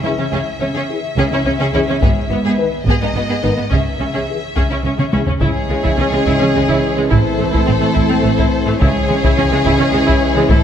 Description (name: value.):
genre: cinematic, epic orchestral film score.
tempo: 71 BPM (dotted quarters).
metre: 6/8.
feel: straight.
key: C# minor, C# harmonic minor from 5.4 s.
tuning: A4 = 435 Hz.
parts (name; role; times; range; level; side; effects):
warm symphonic violin section; melody; 0.0-10.6 s; C5 to E5; -24 LUFS; left 4 dB; none.
rich symphonic violin section; second line; 0.0-10.6 s; B3 to A4; -23 LUFS; left 2 dB; none.
rich studio cello section; bass; 0.0-10.6 s; G#2 to C#3; -21 LUFS; right 2 dB; none.
rich studio double bass section; bass; 0.0-10.6 s; G#1 to C#2; -22 LUFS; right 2 dB; none.
rich symphonic viola section; accompaniment; 0.1-10.6 s; G#3 to E4; -21 LUFS; right 1 dB; none.
dark French horn section; sustained chords; 0.1-10.6 s; D#3 to B4; -22 LUFS; left 3 dB; none.
taiko ensemble; drums; 2.0-10.6 s; none; -19 LUFS; left 1 dB; none.
clear trombone section; sustained chords; 5.4-10.6 s; E3 to A3; -22 LUFS; right 4 dB; none.
timpani; percussion; 8.8-9.6 s; C#3; -27 LUFS; equal; none.
room: moderate concert hall reverb, RT60 2.1 s.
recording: none.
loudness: -13 LUFS.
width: side -9 dB against mid.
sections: 0.0-5.4 A section; 5.4-10.6 B section.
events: drum fill 5.0-5.4.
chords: 0.0 C#m; 2.0 G#m; 3.7 C#m; 7.1 Am; 8.8 C#m.